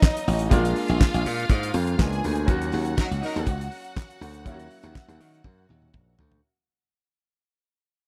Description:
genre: disco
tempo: 122 BPM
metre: 4/4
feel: straight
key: Eb minor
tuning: A4 = 442 Hz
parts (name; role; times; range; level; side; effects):
- clear studio string section; second line; 0.0-6.4 s; Eb4 to Ab5; -35 LUFS; equal; none
- clear grand piano; accompaniment; 0.0-6.5 s; Gb3 to Gb4; -33 LUFS; equal; none
- damped 70s drum kit; drums; 0.0-6.4 s; handclaps, hi-hat, kick drum, snare drum, toms; -23 LUFS; equal; none
- slap bass; bass; 0.3-6.4 s; A1 to Eb3; -28 LUFS; equal; none
- warm horn section; stabs; 3.0-3.5 s; Gb3 to Bb4; -34 LUFS; equal; none
room: little or no reverb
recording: none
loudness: -24 LUFS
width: mono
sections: 0.0-6.4 A section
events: fade-out 0.0-6.4; drum fill 5.4-6.4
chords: 0.0 Abm9 (rootless); 0.5 Bb7; 2.5 Ebm7

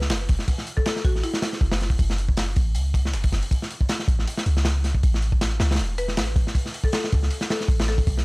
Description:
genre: drum and bass, jungle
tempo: 158 BPM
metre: 4/4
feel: swing 54% on 16ths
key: unclear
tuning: A4 = 439 Hz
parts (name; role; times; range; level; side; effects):
- buzzing marimba with hard mallets; melody; 0.0-1.5, 6.0-8.1 s; E4 to B4; -31 LUFS; left 2 dB; vintage 12-bit sampler grit, dub echo
- warm 808-style bass; bass; 0.0-8.2 s; E1 to C#2; -23 LUFS; equal; none
- crunchy breakbeat drum kit; drums; 0.0-8.2 s; hi-hat, kick drum, snare drum; -23 LUFS; equal; none
- sub drop; sound effects; 0.0-0.5 s; none; barely audible; none; none
- dusty soul sampler-style drum kit; drums; 0.1-8.2 s; hi-hat, snare drum; -39 LUFS; right 1 dB; none
room: little or no reverb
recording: dry, gritty hardware recording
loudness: -20 LUFS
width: side -26 dB against mid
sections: 0.0-8.2 A section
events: impact 0.0-0.5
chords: 0.0 F#m; 5.0 A

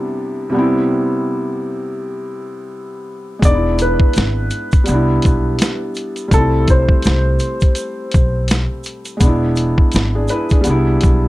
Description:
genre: lo-fi hip hop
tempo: 83 BPM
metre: 4/4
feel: swing 60% on 16ths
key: unclear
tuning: A4 = 440 Hz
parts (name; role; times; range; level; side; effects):
- felt-muted upright piano; accompaniment; 0.0-11.3 s; C3 to B4; -19 LUFS; equal; cassette tape
- warm upright piano; melody; 3.4-8.5 s; A4 to D5; -21 LUFS; left 1 dB; none
- upright bass; bass; 3.4-11.3 s; E1 to C2; -17 LUFS; equal; none
- boom bap sampler-style drum kit; drums; 3.4-11.2 s; hi-hat, kick drum, snare drum; -14 LUFS; equal; none
- tube shaker; percussion; 3.4-11.2 s; none; -34 LUFS; right 5 dB; none
room: light reverb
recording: dark, warm production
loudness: -13 LUFS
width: side -17 dB against mid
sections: 0.0-11.3 A section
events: none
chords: 0.0 Cmaj7; 3.4 E7; 4.9 Cmaj7; 6.3 Am7/C; 9.2 E7; 10.7 Cmaj7

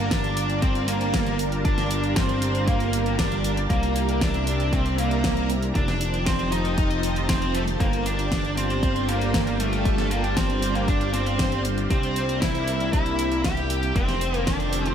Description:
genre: synthwave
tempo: 117 BPM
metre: 4/4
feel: straight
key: G minor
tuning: A4 = 440 Hz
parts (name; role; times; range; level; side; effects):
- high-gain lead guitar; melody; 0.0-14.9 s; A3 to G4; -27 LUFS; right 1 dB; distortion, slapback echo, digital delay
- string machine, violins; second line; 0.0-14.9 s; A4 to G5; -32 LUFS; equal; ensemble chorus, slapback echo
- analog string pad; sustained chords; 0.0-14.9 s; C3 to A5; -30 LUFS; right 1 dB; ensemble chorus
- chorused synth bass; bass; 0.0-14.9 s; F1 to C2; -27 LUFS; equal; none
- electronic kick drum; drums; 0.1-14.6 s; none; -26 LUFS; equal; none
- pop drum kit; drums; 0.1-14.9 s; hi-hat, snare drum; -30 LUFS; equal; none
room: light reverb, digital ambience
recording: none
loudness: -21 LUFS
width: side -8 dB against mid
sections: 0.0-14.9 A section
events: none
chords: 0.0 Gm7; 3.7 C7; 5.8 F7; 7.8 Gm7; 11.9 C7; 14.0 F7

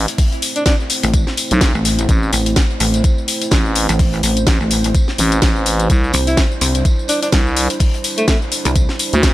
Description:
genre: bass house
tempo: 126 BPM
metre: 4/4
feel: swing 57% on 16ths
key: A minor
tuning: A4 = 441 Hz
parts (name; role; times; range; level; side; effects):
- dark analog pad; sustained chords; 0.0-9.3 s; G3 to C5; -25 LUFS; right 2 dB; lush chorus, sidechain pumping
- growling FM bass; bass; 0.0-9.3 s; A1 to D2; -16 LUFS; equal; overdrive, sidechain pumping
- garage drum kit; drums; 0.1-9.3 s; hi-hat, snare drum, tambourine; -19 LUFS; left 2 dB; none
- raw garage drum kit; drums; 0.1-9.3 s; hi-hat, snare drum, tambourine; -29 LUFS; left 1 dB; high-pass filter on hats, high-pass filter on snare, high-pass filter on perc, high-pass filter on room
- electronic kick drum; drums; 0.2-9.3 s; none; -15 LUFS; equal; overdrive
- breathy alto saxophone; melody; 0.6-0.7, 6.3-8.4 s; A3 to E4; -23 LUFS; equal; tape echo
- pulsing pluck wobble bass; bass; 1.0-8.9 s; A1 to C2; -16 LUFS; equal; chorus, tube saturation, sidechain pumping
room: small room ambience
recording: none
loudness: -13 LUFS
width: side -15 dB against mid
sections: 0.0-9.3 A section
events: none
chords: 0.0 Am; 5.9 Cadd9

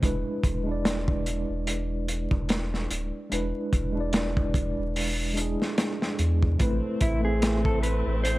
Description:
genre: trip hop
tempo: 73 BPM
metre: 4/4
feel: swing 57% on 16ths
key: unclear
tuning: A4 = 439 Hz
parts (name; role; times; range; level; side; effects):
- mellow tine electric piano; accompaniment; 0.0-8.4 s; G#3 to E5; -30 LUFS; right 1 dB; medium stereo tremolo, low-pass filter, tape echo
- warm sub bass; bass; 0.0-8.4 s; D1 to E2; -28 LUFS; equal; none
- crunchy breakbeat drum kit; drums; 0.0-8.4 s; hi-hat, kick drum, snare drum; -27 LUFS; equal; none
- warm studio string section; sustained chords; 6.6-8.4 s; A3 to C4; -34 LUFS; equal; vintage 12-bit sampler grit
- mellow electric guitar; melody; 7.0-8.4 s; E4 to C5; -29 LUFS; equal; none
room: light reverb, studio reverb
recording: vinyl crackle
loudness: -24 LUFS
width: side -18 dB against mid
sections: 0.0-8.4 A section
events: none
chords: 0.0 E7; 6.6 Amadd9

